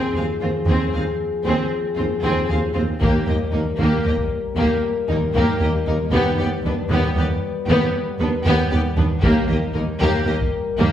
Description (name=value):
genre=cinematic, epic orchestral film score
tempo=77 BPM (dotted quarters)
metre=12/8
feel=straight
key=Eb major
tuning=A4 = 440 Hz
part: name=rich symphonic violin section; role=melody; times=0.0-10.9 s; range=G4 to F5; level=-30 LUFS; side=left 4 dB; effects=none
part: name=rich symphonic violin section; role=second line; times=0.0-10.9 s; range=Bb3 to Ab4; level=-28 LUFS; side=left 2 dB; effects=none
part: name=clear symphonic viola section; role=accompaniment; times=0.0-10.9 s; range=Bb3 to C4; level=-25 LUFS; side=right 1 dB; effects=none
part: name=dark French horn section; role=sustained chords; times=0.0-10.9 s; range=F3 to B4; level=-25 LUFS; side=left 4 dB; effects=none
part: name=rich symphonic cello section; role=bass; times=0.1-10.9 s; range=Eb2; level=-25 LUFS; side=right 2 dB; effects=none
part: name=mellow tuba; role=bass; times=0.2-10.9 s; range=Eb2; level=-26 LUFS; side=right 2 dB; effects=none
part: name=rich symphonic double bass section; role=bass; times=0.2-10.9 s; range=Eb2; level=-25 LUFS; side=right 1 dB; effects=none
part: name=taiko ensemble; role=drums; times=3.0-4.4, 9.2-10.6 s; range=none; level=-25 LUFS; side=equal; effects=none
part: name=timpani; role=percussion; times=6.1-6.9 s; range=Eb3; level=-31 LUFS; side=left 1 dB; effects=none
room=wet recital hall reverb, RT60 1.3 s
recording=recorded in a church or concert hall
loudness=-18 LUFS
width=side -10 dB against mid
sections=0.0-10.9 A section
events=build-up 0.0-10.9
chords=0.0 Fm/Eb; 3.0 Eb; 6.1 G/Eb; 9.2 Eb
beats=0.69 1.46 2.24 | 3.02 3.80 4.58 5.35 | 6.13 6.91 7.69 8.47 | 9.24 10.02 10.80